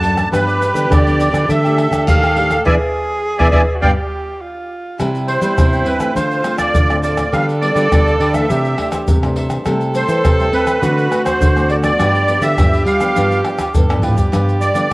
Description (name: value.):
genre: samba and choro.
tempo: 103 BPM.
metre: 4/4.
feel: straight.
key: C major from 5.0 s.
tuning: A4 = 442 Hz.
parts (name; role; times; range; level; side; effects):
musette accordion; melody; 0.0-14.9 s; B4 to A5; -17 LUFS; right 1 dB; none.
breathy tenor saxophone; second line; 0.0-14.9 s; E4 to A4; -22 LUFS; right 1 dB; none.
cavaquinho; accompaniment; 0.0-14.9 s; D4 to G5; -26 LUFS; right 2 dB; none.
nylon-string guitar; accompaniment; 0.0-14.9 s; G2 to G4; -24 LUFS; left 2 dB; none.
nylon-string guitar; bass; 0.0-14.9 s; F#2 to C4; -18 LUFS; equal; none.
pandeiro, tube shaker, surdo and tamborim; percussion; 0.0-14.9 s; none; -18 LUFS; equal; none.
room: moderate spring reverb, RT60 2.0 s.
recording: home recording on cassette.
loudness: -12 LUFS.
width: side -22 dB against mid.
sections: 0.0-5.0 A section; 5.0-14.9 B section.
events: band accent 2.7-5.0; drum fill 13.9-14.3.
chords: 0.3 G7; 1.5 Dsus4; 2.7 E7; 3.8 G7; 5.0 Cmaj7; 6.2 Dm7; 7.3 G7/D; 8.5 C69; 9.7 Am7/C; 10.8 D7; 12.0 G7.